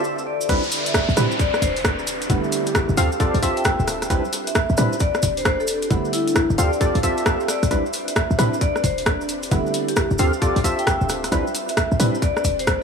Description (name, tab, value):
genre	UK garage, two-step garage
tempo	133 BPM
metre	4/4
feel	swing 64% on 16ths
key	A minor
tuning	A4 = 440 Hz
part	ethereal airy pad	sustained chords	0.0-12.8 s	D3 to E5	-31 LUFS	right 2 dB	ensemble chorus, built-in reverb, sidechain pumping
part	percussive organ stab	stabs	0.0-12.2 s	D3 to F5	-24 LUFS	right 1 dB	analog chorus, cassette tape, tape echo
part	cabasa	percussion	0.0-12.8 s	none	-33 LUFS	right 3 dB	dub echo
part	vibraphone with medium mallets	melody	0.3-12.8 s	E4 to G5	-26 LUFS	left 3 dB	dub echo
part	short 808-style bass	bass	0.5-12.8 s	D1 to A2	-22 LUFS	equal	tube saturation
part	electronic kick drum	drums	0.5-12.8 s	none	-23 LUFS	equal	overdrive
part	punchy analog drum machine	drums	0.5-12.8 s	hi-hat, rim click	-25 LUFS	equal	overdrive, dub echo
part	downlifter	sound effects	0.5-4.1 s	none	-29 LUFS	equal	none
room	light reverb, digital ambience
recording	echo-heavy mix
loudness	-18 LUFS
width	side -6 dB against mid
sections	0.5-12.8 A section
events	drop 0.5-12.8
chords	0.5 Am11; 2.3 Em11; 3.0 Dm11; 4.1 Am11; 5.9 Em11; 6.6 Dm11; 7.7 Am11; 9.5 Em11; 10.2 Dm11; 11.3 Am11